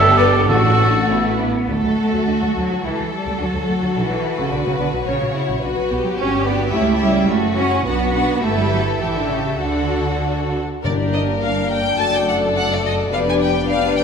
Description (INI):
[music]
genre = quick classical-period movement for symphony orchestra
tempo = 95-110 BPM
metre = 2/4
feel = rubato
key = D major, G minor from 10.8 s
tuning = A4 = 439 Hz
[part]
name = warm studio violin section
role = melody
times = 0.0-14.0 s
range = E4 to A5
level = -25 LUFS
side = left 4 dB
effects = none
[part]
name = warm oboe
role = second line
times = 0.0-1.4 s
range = A4 to E5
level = -17 LUFS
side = right 2 dB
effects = none
[part]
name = rich studio viola section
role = accompaniment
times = 0.0-14.0 s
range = F#3 to G4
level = -25 LUFS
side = equal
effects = none
[part]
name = rich studio cello section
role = bass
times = 0.0-14.0 s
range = F2 to A4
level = -22 LUFS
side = right 3 dB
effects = none
[part]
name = warm studio double bass section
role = bass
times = 0.0-14.0 s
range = F1 to D2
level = -25 LUFS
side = right 2 dB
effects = none
[part]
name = rich studio violin section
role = second line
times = 0.2-14.0 s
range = F#4 to F#5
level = -23 LUFS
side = left 4 dB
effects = none
[part]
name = timpani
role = percussion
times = 0.5-1.1, 10.8-11.7 s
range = G2 to A2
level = -24 LUFS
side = left 1 dB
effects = none
[part]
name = mellow French horn section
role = sustained chords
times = 10.8-14.0 s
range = A3 to D4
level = -23 LUFS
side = left 2 dB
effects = none
[sound]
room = wet scoring stage reverb, RT60 2.1 s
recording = minimal, uncompressed stereo recording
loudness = -16 LUFS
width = side -6 dB against mid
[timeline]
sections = 0.0-1.7 A section; 1.7-10.8 B section; 10.8-14.0 C section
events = none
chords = 0.5 D/A; 1.1 A; 1.7 D; 2.8 A/C#; 3.4 D; 4.0 Bm; 5.1 F#/A#; 5.6 B5; 6.2 Gmaj7; 6.7 C#dim; 7.3 F#m7; 7.9 Bm; 8.4 Em/G; 9.0 A7; 9.6 D; 10.8 Gm; 12.0 D/F#; 13.1 G7/F